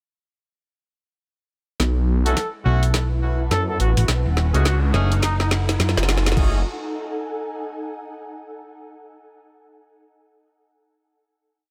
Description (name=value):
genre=glitch hop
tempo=105 BPM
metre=4/4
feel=swing 61% on 16ths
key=F# dorian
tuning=A4 = 439 Hz
part: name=phased detuned saw bass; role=bass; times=1.8-6.6 s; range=F#1 to F#2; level=-22 LUFS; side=equal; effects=phaser, tube saturation
part: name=drum and bass drum kit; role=drums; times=1.8-6.5 s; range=crash cymbal, hi-hat, snare drum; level=-27 LUFS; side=equal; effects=overdrive
part: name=electronic kick drum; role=drums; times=1.8-6.5 s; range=none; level=-26 LUFS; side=equal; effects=overdrive, high-pass filter on kick
part: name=riser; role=sound effects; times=3.2-6.4 s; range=none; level=-36 LUFS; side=equal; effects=none
part: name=ethereal airy pad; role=texture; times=2.9-8.6 s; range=D#4 to A5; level=-34 LUFS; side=equal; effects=ensemble chorus, built-in reverb, sidechain pumping
part: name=mellow trumpet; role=melody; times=2.3-5.5 s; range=D#4 to A4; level=-31 LUFS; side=equal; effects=digital delay
part: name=clear horn section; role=stabs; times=2.3-6.6 s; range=A3 to G#4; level=-32 LUFS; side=equal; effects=sidechain pumping, digital delay
part: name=hollow-body short-scale fingered electric bass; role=bass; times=2.7-5.9 s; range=D#1 to F#2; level=-22 LUFS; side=equal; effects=tube saturation
room=light reverb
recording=none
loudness=-21 LUFS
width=mono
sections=1.8-6.4 build; 6.4-8.7 final chord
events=build-up 1.8-6.4; drum fill 1.8-6.4; riser 3.2-6.4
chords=1.8 B7sus4; 4.1 F#m69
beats=| 1.80 2.37 2.94 3.51 | 4.08 4.66 5.23 5.80 | 6.37 6.94 7.51 8.08